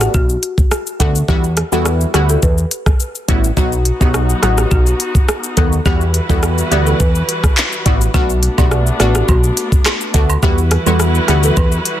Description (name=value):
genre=dancehall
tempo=105 BPM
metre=4/4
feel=straight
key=E minor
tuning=A4 = 439 Hz
part: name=folk marimba with medium mallets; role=melody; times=0.0-12.0 s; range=F#4 to B4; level=-22 LUFS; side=equal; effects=digital delay
part: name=synth brass stab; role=accompaniment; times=0.0-11.6 s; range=F#3 to F#4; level=-19 LUFS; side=equal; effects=chorus, phaser
part: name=fat analog bass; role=bass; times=0.0-11.8 s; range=A1 to E2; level=-16 LUFS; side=equal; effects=none
part: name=afro-pop drum kit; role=drums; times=0.0-12.0 s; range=handclaps, hi-hat, kick drum, rim click, shaker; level=-15 LUFS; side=equal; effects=soft clipping on snare
part: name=warm studio string section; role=sustained chords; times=3.6-12.0 s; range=E3 to B4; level=-23 LUFS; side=equal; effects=sidechain pumping
part: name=cabasa and woodblock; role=percussion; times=8.4-12.0 s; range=none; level=-27 LUFS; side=right 8 dB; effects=none
room=small room ambience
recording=dense, heavily limited modern master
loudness=-12 LUFS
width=side -12 dB against mid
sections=0.0-3.6 A section; 3.6-12.0 B section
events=none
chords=0.0 Bm7; 1.3 Emadd9; 3.6 B; 5.9 Emadd9; 8.1 Bm7; 10.4 Emadd9